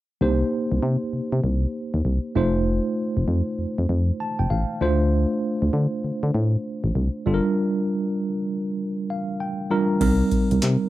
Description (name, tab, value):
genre	R&B, new jack swing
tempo	98 BPM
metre	4/4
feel	swing 64% on 16ths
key	C dorian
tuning	A4 = 438 Hz
part	mellow tine electric piano	accompaniment	0.2-10.9 s	G3 to Bb5	-23 LUFS	right 1 dB	medium stereo tremolo
part	solid FM bass	bass	0.2-10.8 s	F1 to D3	-21 LUFS	left 1 dB	none
part	booming analog drum machine	drums	10.0-10.8 s	crash cymbal, handclaps, hi-hat, kick drum, snare drum	-25 LUFS	left 1 dB	none
room	light reverb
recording	dry, close 1970s-style studio recording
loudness	-21 LUFS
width	side -15 dB against mid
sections	0.2-10.0 A section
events	tine electric piano fill 3.9-5.1, 8.8-10.0; break 7.6-10.0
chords	0.2 Cm7; 2.4 F7; 4.8 Dm7; 7.3 Gm7; 10.0 Cm7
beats	| 0.21 0.83 1.44 2.05 | 2.66 3.28 3.89 4.50 | 5.11 5.72 6.34 6.95 | 7.56 8.17 8.79 9.40 | 10.01 10.62